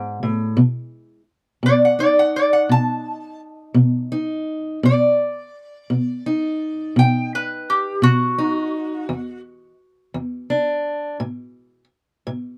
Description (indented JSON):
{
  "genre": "acoustic country blues, solo or duo",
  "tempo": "56 BPM (dotted quarters)",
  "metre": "12/8",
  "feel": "straight",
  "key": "unclear",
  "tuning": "A4 = 440 Hz",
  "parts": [
    { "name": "fingerpicked steel-string acoustic guitar", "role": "accompaniment", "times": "0.0-12.6 s", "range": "E2 to D#4", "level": "-22 LUFS", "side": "equal", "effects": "none" },
    { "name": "lap resonator guitar", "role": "melody", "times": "1.7-9.4 s", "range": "F#4 to A5", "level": "-21 LUFS", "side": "equal", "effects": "none" }
  ],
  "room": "light reverb",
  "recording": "none",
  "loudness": "-20 LUFS",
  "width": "mono",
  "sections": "0.0-12.6 A section",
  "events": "resonator guitar played with a steel bar solo 0.0-12.6",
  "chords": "0.0 E7 (rootless); 0.6 B; 9.1 Dsus2/E; 11.2 A5",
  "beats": "| 0.59 1.65 2.71 3.77 | 4.83 5.89 6.96 8.02 | 9.08 10.14 11.21 12.27"
}